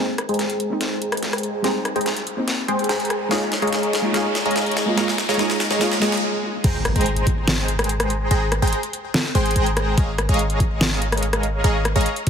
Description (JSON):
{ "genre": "future bass", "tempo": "144 BPM", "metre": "4/4", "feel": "half-time", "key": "Ab major", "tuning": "A4 = 441 Hz", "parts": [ { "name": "soft round pluck", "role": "accompaniment", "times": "0.0-6.2 s", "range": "G3 to F4", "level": "-26 LUFS", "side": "right 1 dB", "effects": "analog chorus, sidechain pumping, ping-pong delay" }, { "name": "supersaw stab", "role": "riff", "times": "0.0-12.1 s", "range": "Ab3 to C6", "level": "-22 LUFS", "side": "equal", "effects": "sidechain pumping, low-pass filter, ping-pong delay" }, { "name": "warm 808-style bass", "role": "bass", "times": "0.0-12.1 s", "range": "Ab1", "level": "-22 LUFS", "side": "equal", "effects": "sidechain pumping, high-pass filter" }, { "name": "riser, swell and impact", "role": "sound effects", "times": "0.0-8.3 s", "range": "none", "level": "-31 LUFS", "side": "equal", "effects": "none" }, { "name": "pop drum kit", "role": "drums", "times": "0.2-12.3 s", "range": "crash cymbal, hi-hat, rim click, snare drum", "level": "-24 LUFS", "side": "equal", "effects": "overdrive, high-pass filter on snare, high-pass filter on hats, high-pass filter on cymbals, high-pass filter on room" }, { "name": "electronic kick drum", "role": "drums", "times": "6.6-7.4, 10.0-12.3 s", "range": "none", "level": "-19 LUFS", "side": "equal", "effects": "overdrive" } ], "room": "moderate lush hall reverb, RT60 1.7 s", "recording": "heavily compressed radio sound", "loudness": "-18 LUFS", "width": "side -7 dB against mid", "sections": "0.0-6.6 A section; 6.6-12.3 B section", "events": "build-up 0.0-6.6; drum fill 0.0-6.2; riser 0.0-6.2; filter sweep on supersaw synth 0.0-6.6; swell 5.8-6.6; stop 6.2-6.6; drop 6.6-12.3; impact 6.6-8.3", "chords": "0.0 Abmaj7; 3.3 Db69/Ab; 6.6 Abmaj7; 10.0 Db69/Ab", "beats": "0.39 0.81 1.23 | 1.64 2.06 2.48 2.89 | 3.31 3.73 4.14 4.56 | 4.98 5.39 5.81 6.23 | 6.64 7.06 7.48 7.89 | 8.31 8.73 9.14 9.56 | 9.98 10.39 10.81 11.23 | 11.64 12.06" }